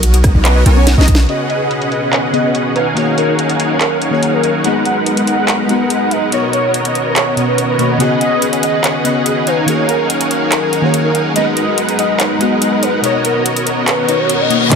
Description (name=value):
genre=future bass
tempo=143 BPM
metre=4/4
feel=half-time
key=unclear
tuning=A4 = 440 Hz
part: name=thumb-piano-like synth pluck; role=arpeggios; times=0.0-1.2 s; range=C#4 to A#4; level=-27 LUFS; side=left 3 dB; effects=none
part: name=supersaw chords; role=riff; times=0.0-14.8 s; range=Ab3 to Ab5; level=-16 LUFS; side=right 1 dB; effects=ensemble chorus, sidechain pumping, low-pass filter
part: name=warm 808-style bass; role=bass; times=0.0-1.3, 14.7-14.8 s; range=B1 to Db2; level=-10 LUFS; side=equal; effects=sidechain pumping, high-pass filter
part: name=trap drum kit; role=drums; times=0.0-14.8 s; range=handclaps, hi-hat, rim click, snare drum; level=-20 LUFS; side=equal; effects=low-pass filter on hats, low-pass filter on cymbals, low-pass filter on snare
part: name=electronic kick drum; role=drums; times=0.2-1.2, 14.7-14.8 s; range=none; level=-13 LUFS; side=equal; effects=none
part: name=warm velvety synth lead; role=melody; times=0.4-14.8 s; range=Bb4 to Gb5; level=-19 LUFS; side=equal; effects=chorus, sidechain pumping, tape echo
part: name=glassy digital keys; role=accompaniment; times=1.3-14.8 s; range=B2 to Eb5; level=-18 LUFS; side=left 3 dB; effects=chorus, sidechain pumping
part: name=airy breathy pad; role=sustained chords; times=1.7-14.8 s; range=Cb3 to A#5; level=-24 LUFS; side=right 1 dB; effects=chorus, sidechain pumping
part: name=reverse cymbal and riser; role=sound effects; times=14.0-14.8 s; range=none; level=-17 LUFS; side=left 6 dB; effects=none
room=light reverb, digital ambience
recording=none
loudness=-11 LUFS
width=side -6 dB against mid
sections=0.0-1.3 A section; 1.3-14.7 B section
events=drop 0.0-1.3; drum fill 0.9-1.3; band accent 1.1; reverse cymbal 14.0-14.7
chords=0.0 Bmaj9; 1.3 Db9sus4; 2.8 Ebm11; 4.6 Abm7; 6.3 Bmaj9; 8.0 Db9sus4; 9.5 Ebm11; 11.4 Abm7; 13.0 Bmaj9